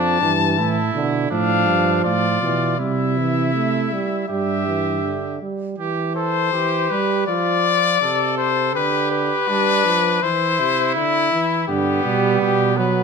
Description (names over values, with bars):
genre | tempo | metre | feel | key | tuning
classical, imitative canzona for brass ensemble | 81 BPM | 4/4 | straight | C major | A4 = 440 Hz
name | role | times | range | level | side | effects
clear trumpet | melody | 0.0-13.0 s | E4 to A5 | -20 LUFS | left 8 dB | none
clear trumpet | second line | 0.0-13.0 s | B3 to A4 | -24 LUFS | right 6 dB | none
mellow trombone | accompaniment | 0.0-13.0 s | C3 to A3 | -23 LUFS | right 4 dB | none
mellow tuba | bass | 0.0-5.4, 11.7-13.0 s | F2 to C3 | -23 LUFS | right 3 dB | none
room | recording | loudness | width
wet stone room reverb, RT60 1.0 s | none | -17 LUFS | side -5 dB against mid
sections
0.0-5.8 A section; 5.8-13.0 B section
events
none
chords
0.0 Dm/F; 2.8 C; 4.3 G5; 5.8 C/E; 7.3 Dm/F; 8.8 G/D; 10.2 C; 11.7 G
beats
0.58 1.31 2.05 | 2.80 3.54 4.29 5.04 | 5.78 6.53 7.27 8.02 | 8.75 9.49 10.23 10.96 | 11.69 12.42